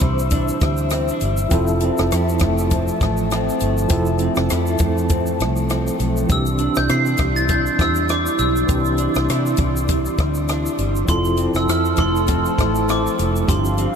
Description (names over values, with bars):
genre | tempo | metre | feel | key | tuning
indie pop, bedroom pop | 100 BPM | 4/4 | swing 55% on 16ths | unclear | A4 = 437 Hz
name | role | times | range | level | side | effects
glockenspiel with hard plastic mallets | melody | 0.0-0.6, 6.3-14.0 s | C6 to C7 | -25 LUFS | right 1 dB | lush chorus, analog delay
electric guitar through a small old amp | accompaniment | 0.0-14.0 s | G2 to E4 | -25 LUFS | equal | wide subtle chorus, warbly pitch drift
overdriven tine electric piano | accompaniment | 0.0-14.0 s | E3 to A4 | -25 LUFS | right 2 dB | fast tremolo, cassette tape
warbly tape-like pad | sustained chords | 0.0-14.0 s | F3 to E6 | -24 LUFS | equal | chorus, built-in reverb
vintage muted fingered electric bass | bass | 0.0-13.9 s | F1 to C3 | -22 LUFS | equal | none
compact cocktail drum kit | drums | 0.0-13.9 s | hi-hat, kick drum, rim click, shaker | -23 LUFS | equal | none
room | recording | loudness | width
moderate huge ambient reverb, RT60 7.9 s | dreamy mix soaked in reverb | -16 LUFS | side -7 dB against mid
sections
0.0-14.0 A section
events
none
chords
0.0 Cadd9; 1.5 Fmaj7; 6.3 Cadd9; 11.1 Fmaj7